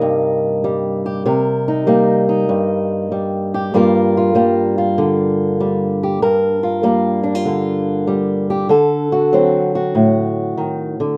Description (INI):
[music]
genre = blues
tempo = 97 BPM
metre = 4/4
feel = swing 68% on 8ths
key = G minor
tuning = A4 = 439 Hz
[part]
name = fingerpicked old ladder-braced acoustic guitar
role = solo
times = 0.0-11.2 s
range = G2 to Bb4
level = -17 LUFS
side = equal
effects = none
[sound]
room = wet studio reverb, RT60 0.5 s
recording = rough home demo mix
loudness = -17 LUFS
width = mono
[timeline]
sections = 0.0-11.2 A section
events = none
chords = 0.0 Cm7; 3.7 Gm7; 8.7 D7